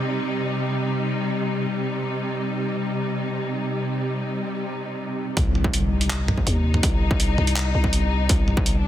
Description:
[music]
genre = half-time drum and bass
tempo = 164 BPM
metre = 4/4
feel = half-time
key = C minor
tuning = A4 = 440 Hz
[part]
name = warm studio string section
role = sustained chords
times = 0.0-8.9 s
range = C3 to Eb4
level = -25 LUFS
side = equal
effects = sidechain pumping
[part]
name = growling 808-style bass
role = bass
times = 5.4-8.9 s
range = C2 to Eb2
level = -22 LUFS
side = equal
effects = none
[part]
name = boom bap sampler-style drum kit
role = drums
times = 5.4-8.7 s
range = handclaps, hi-hat, toms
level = -26 LUFS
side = right 1 dB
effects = overdrive, low-pass filter on hats, low-pass filter on toms, low-pass filter on snare, low-pass filter on room
[part]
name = electronic kick drum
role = drums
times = 5.4-8.6 s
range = none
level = -22 LUFS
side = equal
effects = distortion
[part]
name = impact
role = sound effects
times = 5.4-6.8 s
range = none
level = -31 LUFS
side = equal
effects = none
[sound]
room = light reverb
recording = dense, heavily limited modern master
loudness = -21 LUFS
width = side -12 dB against mid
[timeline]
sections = 0.0-5.4 A section; 5.4-8.9 B section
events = break 4.6-5.4; drop 5.4-8.9; impact 5.4-6.8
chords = 0.0 Cm

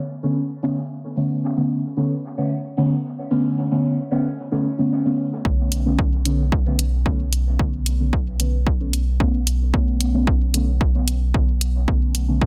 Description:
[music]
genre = dub techno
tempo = 112 BPM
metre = 4/4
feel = straight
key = B minor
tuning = A4 = 440 Hz
[part]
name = deep mellow chord stab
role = stabs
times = 0.2-12.5 s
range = D3 to C#4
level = -25 LUFS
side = equal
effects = chorus, phaser, sidechain pumping, dub echo
[part]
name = soft dub sub bass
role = bass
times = 5.5-12.5 s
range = B1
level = -23 LUFS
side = equal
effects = tube saturation, sidechain pumping
[part]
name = electronic kick drum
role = drums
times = 5.5-12.5 s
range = none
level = -22 LUFS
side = equal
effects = overdrive
[part]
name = electronic hi-hat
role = drums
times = 5.7-12.3 s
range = none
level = -26 LUFS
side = equal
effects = overdrive, soft clipping on snare
[sound]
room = light reverb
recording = dense, heavily limited modern master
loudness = -21 LUFS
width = mono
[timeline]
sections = 0.0-5.5 A section; 5.5-12.5 B section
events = filter sweep on synth stab 0.0-5.5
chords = 0.0 Bm9

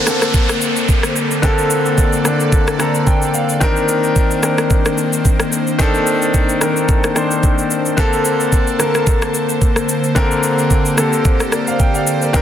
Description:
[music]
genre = amapiano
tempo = 110 BPM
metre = 4/4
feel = swing 55% on 16ths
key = Bb major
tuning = A4 = 440 Hz
[part]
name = clear concert grand piano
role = accompaniment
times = 0.0-12.4 s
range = D3 to Bb5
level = -17 LUFS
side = left 1 dB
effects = none
[part]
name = airy breathy pad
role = sustained chords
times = 0.0-12.4 s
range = D3 to A5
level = -21 LUFS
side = left 1 dB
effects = chorus, sidechain pumping
[part]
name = downlifter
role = sound effects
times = 0.0-3.6 s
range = none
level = -23 LUFS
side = right 1 dB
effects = none
[part]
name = smooth R&B drum kit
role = drums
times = 0.1-12.4 s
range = kick drum, rim click, shaker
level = -16 LUFS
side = equal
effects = none
[sound]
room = light reverb, digital ambience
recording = dense, heavily limited modern master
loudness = -13 LUFS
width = side -10 dB against mid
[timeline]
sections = 0.0-12.4 A section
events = grand piano fill 2.5-3.6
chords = 0.0 Bbmaj9; 3.6 Cm9; 8.0 Bbmaj9

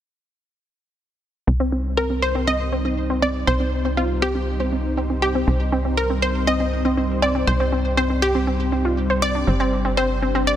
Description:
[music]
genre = house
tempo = 120 BPM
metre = 4/4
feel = straight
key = C minor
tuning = A4 = 439 Hz
[part]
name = lush unison pad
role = sustained chords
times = 1.8-10.6 s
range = G3 to C5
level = -27 LUFS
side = equal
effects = chorus, phaser
[part]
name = tight sequencer bass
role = bass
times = 1.5-10.6 s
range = G1 to C2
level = -23 LUFS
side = equal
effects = none
[part]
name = glassy wavetable pluck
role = arpeggios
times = 1.6-10.4 s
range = C4 to C5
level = -24 LUFS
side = equal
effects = chorus, tape echo
[part]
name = wide unison pluck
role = melody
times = 2.0-10.6 s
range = F4 to Eb5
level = -23 LUFS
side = equal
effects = tape echo
[sound]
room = light reverb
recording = dense, heavily limited modern master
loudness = -18 LUFS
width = side -11 dB against mid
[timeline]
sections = 1.5-10.6 A section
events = filter sweep on synth arpeggio sound 1.5-10.6; filter sweep on analog synth pad 1.5-10.6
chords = 1.5 Cm; 9.5 Gsus4

